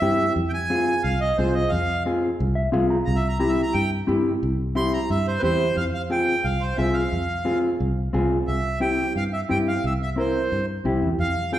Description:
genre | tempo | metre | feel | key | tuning
latin, cumbia | 177 BPM | 4/4 | straight | F harmonic minor | A4 = 440 Hz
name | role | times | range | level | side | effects
accordion | melody | 0.0-11.6 s | B4 to C6 | -25 LUFS | right 2 dB | none
mellow electric guitar | accompaniment | 0.0-11.6 s | C4 to Bb5 | -24 LUFS | left 1 dB | none
fingered electric bass | bass | 0.0-11.6 s | C2 to G2 | -26 LUFS | equal | none
room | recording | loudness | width
wet recital hall reverb, RT60 1.5 s | recorded in a church or concert hall | -20 LUFS | side -12 dB against mid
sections
0.0-5.8 A section; 5.8-11.6 B section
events
accordion solo 0.0-5.8; clean electric guitar fill 2.4-3.1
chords
0.4 Fm; 3.1 C; 5.8 Fm; 8.5 C

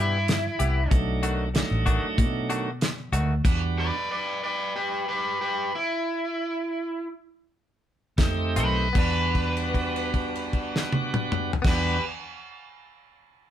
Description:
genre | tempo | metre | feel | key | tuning
straight-eighth soul blues | 76-95 BPM | 4/4 | swing 55% on 16ths | E minor | A4 = 443 Hz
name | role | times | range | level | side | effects
crunchy overdriven guitar | melody | 0.0-12.0 s | E4 to D5 | -27 LUFS | equal | none
bright tonewheel organ | accompaniment | 0.0-4.0, 8.2-12.0 s | B2 to G4 | -30 LUFS | right 3 dB | overdrive, slow rotary speaker
direct-recorded clean electric guitar | stabs | 0.0-3.3, 8.6-12.0 s | D#3 to G4 | -32 LUFS | left 3 dB | none
vintage muted fingered electric bass | bass | 0.0-3.9, 8.2-12.0 s | A1 to B2 | -27 LUFS | equal | none
damped 70s drum kit | drums | 0.3-3.6, 8.2-11.8 s | crash cymbal, hi-hat, kick drum, snare drum, toms | -26 LUFS | equal | none
room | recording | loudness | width
light reverb | band playing live in one room | -23 LUFS | side -10 dB against mid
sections
0.0-9.0 A section; 9.0-12.1 B section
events
slowing down 3.4-9.0; stop 3.4-8.2; held note 9.0-11.6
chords
0.0 Cmaj7; 0.9 B7#9; 3.4 Em7; 8.2 F7; 9.0 Em7

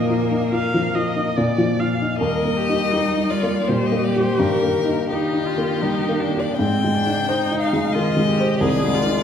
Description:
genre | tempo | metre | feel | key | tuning
classical, slow romantic movement for piano quartet | 69-90 BPM | 3/4 | rubato | Eb major | A4 = 440 Hz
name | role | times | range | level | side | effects
rich violin | melody | 0.0-9.2 s | G4 to G5 | -24 LUFS | left 6 dB | none
rich cello | second line | 0.0-9.2 s | C3 to Bb3 | -28 LUFS | right 2 dB | none
dark baby grand piano | accompaniment | 0.0-9.2 s | C2 to C5 | -20 LUFS | left 1 dB | none
rich viola | accompaniment | 0.0-9.2 s | C4 to F5 | -25 LUFS | right 1 dB | none
room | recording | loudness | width
wet recital hall reverb, RT60 1.4 s | heard from further back in the room | -18 LUFS | side -8 dB against mid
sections
0.0-2.2 A section; 2.2-9.2 B section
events
none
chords
0.0 Bbsus4; 1.4 Bb; 2.2 Eb; 4.4 Eb/G; 6.6 Abmaj7; 8.6 Ab/C

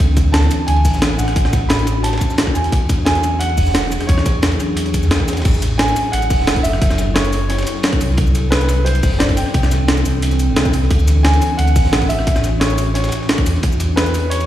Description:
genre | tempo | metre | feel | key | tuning
liquid drum and bass | 176 BPM | 4/4 | straight | A major | A4 = 439 Hz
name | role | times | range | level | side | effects
ethereal airy pad | sustained chords | 0.0-14.5 s | E3 to A4 | -24 LUFS | equal | ensemble chorus, built-in reverb, sidechain pumping
sub bass with octave | bass | 0.0-14.5 s | E1 to E2 | -17 LUFS | equal | none
breakbeat sampler-style drum kit | drums | 0.0-14.5 s | crash cymbal, hi-hat, rim click, shaker, snare drum | -20 LUFS | equal | none
crunchy breakbeat drum kit | drums | 0.0-14.5 s | hi-hat, ride cymbal, snare drum | -28 LUFS | equal | high-pass filter on cymbals, high-pass filter on hats, high-pass filter on snare, high-pass filter on room
electronic kick drum | drums | 0.0-13.7 s | none | -16 LUFS | equal | none
warm grand piano | melody | 0.3-14.5 s | B4 to B5 | -23 LUFS | right 1 dB | digital delay
room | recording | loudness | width
light reverb, small room ambience | played on a big sound system in a bare room, large studio reverb | -13 LUFS | side -12 dB against mid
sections
0.0-5.5 A section; 5.5-14.5 A section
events
drop 0.0-5.5, 5.5-14.5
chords
0.0 Dmaj9; 2.7 E13; 5.5 A6; 8.2 C69; 10.9 Dmaj9; 13.6 E13

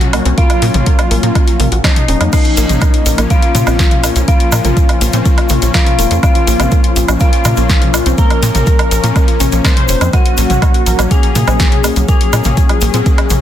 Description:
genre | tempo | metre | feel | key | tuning
melodic techno | 123 BPM | 4/4 | straight | Bb minor | A4 = 436 Hz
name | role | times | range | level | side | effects
analog synth brass | melody | 0.0-13.4 s | Eb4 to C5 | -19 LUFS | left 2 dB | chorus, sidechain pumping, dub echo
dark detuned synth bell | second line | 0.0-13.4 s | Eb5 to C6 | -23 LUFS | left 1 dB | chorus, sidechain pumping, dub echo
wide unison pluck | arpeggios | 0.0-13.4 s | F3 to Bb5 | -22 LUFS | equal | sidechain pumping, dub echo
brassy analog pad | stabs | 0.0-13.4 s | F3 to Db4 | -20 LUFS | left 3 dB | chorus, sidechain pumping, dub echo
tight sequencer bass | bass | 0.0-13.4 s | F1 to Bb2 | -14 LUFS | equal | sidechain pumping
analog drone | drone | 0.2-13.4 s | Bb2 to Db3 | -29 LUFS | left 1 dB | none
house drum kit | drums | 0.0-13.4 s | crash cymbal, hi-hat, snare drum, toms, woodblock | -18 LUFS | equal | studio reverb
electronic kick drum | drums | 0.4-13.2 s | none | -12 LUFS | equal | overdrive, studio reverb
egg shaker | percussion | 2.3-13.4 s | none | -25 LUFS | right 4 dB | none
room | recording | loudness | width
light reverb, digital ambience | dense, heavily limited modern master | -9 LUFS | side -11 dB against mid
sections
0.0-13.4 A section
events
none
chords
0.0 Gb; 2.3 Bbm; 10.1 Gb

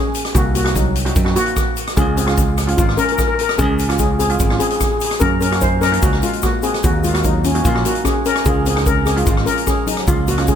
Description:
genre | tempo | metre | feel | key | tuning
calypso | 148 BPM | 4/4 | straight | Db major | A4 = 441 Hz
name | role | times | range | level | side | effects
steel pan | melody | 0.0-10.6 s | Gb3 to C5 | -18 LUFS | left 3 dB | slapback echo, tape echo
street-band drum kit | drums | 0.1-10.6 s | hi-hat, kick drum, rim click | -19 LUFS | right 1 dB | none
egg shaker | percussion | 0.1-10.6 s | none | -31 LUFS | left 8 dB | none
steel pan | accompaniment | 0.3-10.6 s | Ab3 to Ab4 | -25 LUFS | right 4 dB | slapback echo
modern bright fingered electric bass | bass | 0.3-10.6 s | Ab1 to Gb2 | -19 LUFS | right 1 dB | none
room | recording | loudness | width
light reverb, small room ambience | none | -14 LUFS | side -9 dB against mid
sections
0.0-10.6 A section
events
none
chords
0.3 Cm7b5; 2.0 Db; 5.2 Gb6; 6.8 Ebm7; 8.4 Db

